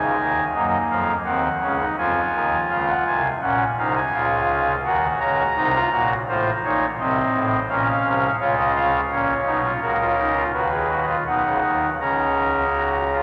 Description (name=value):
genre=classical, baroque-style 3-part fugue for pipe organ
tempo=84 BPM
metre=4/4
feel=straight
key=F# major from 9.1 s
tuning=A4 = 440 Hz
part: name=pipe organ, soft reed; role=solo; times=0.0-13.2 s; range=A1 to Bb5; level=-21 LUFS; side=equal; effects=none
room=wet cathedral reverb, RT60 5.9 s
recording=none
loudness=-21 LUFS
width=mono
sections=0.0-13.2 A section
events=none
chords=0.0 Ab5; 0.5 Gb; 2.0 Fm; 3.4 Gb/Bb; 4.8 Cm7b5; 6.3 F7/A; 7.7 Bbm; 9.1 F#/A# (rootless); 10.5 B/D#; 12.0 C#sus4